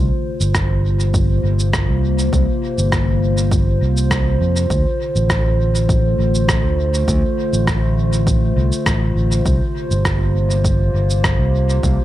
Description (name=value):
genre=ambient dub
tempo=101 BPM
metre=4/4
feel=straight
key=unclear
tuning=A4 = 440 Hz
part: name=warbly tape-like pad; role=sustained chords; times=0.0-12.0 s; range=C3 to C5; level=-21 LUFS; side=left 1 dB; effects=chorus, built-in reverb
part: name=fingered electric bass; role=bass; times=0.0-12.0 s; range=G1 to F2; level=-17 LUFS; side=equal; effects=none
part: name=electronic shaker and rim click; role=drums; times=0.4-12.0 s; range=none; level=-24 LUFS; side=right 1 dB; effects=dub echo
part: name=electronic kick drum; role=drums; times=0.5-12.0 s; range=none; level=-21 LUFS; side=equal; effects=overdrive
room=little or no reverb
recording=none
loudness=-14 LUFS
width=side -14 dB against mid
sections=0.0-12.0 A section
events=none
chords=0.0 C7sus4; 4.7 Dm7; 9.5 C7sus4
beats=0.55 1.14 1.73 | 2.33 2.92 3.52 4.11 | 4.70 5.30 5.89 6.49 | 7.08 7.67 8.27 8.86 | 9.46 10.05 10.64 11.24 | 11.83